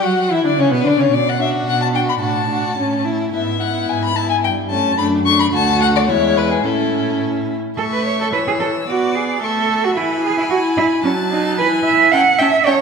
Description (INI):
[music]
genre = quick classical-period movement for string quartet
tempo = 110 BPM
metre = 2/4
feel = straight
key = A major from 3.3 s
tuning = A4 = 440 Hz
[part]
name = rich violin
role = melody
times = 0.0-12.8 s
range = G#4 to E6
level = -20 LUFS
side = left 7 dB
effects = none
[part]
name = rich violin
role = second line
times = 0.0-12.7 s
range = B3 to A5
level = -21 LUFS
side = left 3 dB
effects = none
[part]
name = rich viola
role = accompaniment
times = 0.0-12.7 s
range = E3 to F#4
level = -21 LUFS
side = right 2 dB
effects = none
[part]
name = warm cello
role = bass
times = 0.0-12.8 s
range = D2 to F#5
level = -18 LUFS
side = right 5 dB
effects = none
[sound]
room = wet concert hall reverb, RT60 2.5 s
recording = minimal, uncompressed stereo recording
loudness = -14 LUFS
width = side -5 dB against mid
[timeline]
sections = 0.0-7.8 A section; 7.8-12.8 B section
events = none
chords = 0.0 Bmadd9; 1.1 Bm; 2.2 D/A; 2.8 A; 3.3 E/G#; 4.4 A7/G; 5.0 D/F#; 5.5 D; 6.1 E; 6.6 A; 8.9 G#dim/B; 9.4 A; 10.0 E; 11.0 D#dim/F#; 11.6 E; 12.1 A7/C#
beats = | 0.04 0.59 | 1.13 1.67 | 2.22 2.78 | 3.35 3.90 | 4.45 4.99 | 5.53 6.08 | 6.64 7.21 | 7.78 8.33 | 8.88 9.42 | 9.96 10.51 | 11.04 11.59 | 12.12 12.67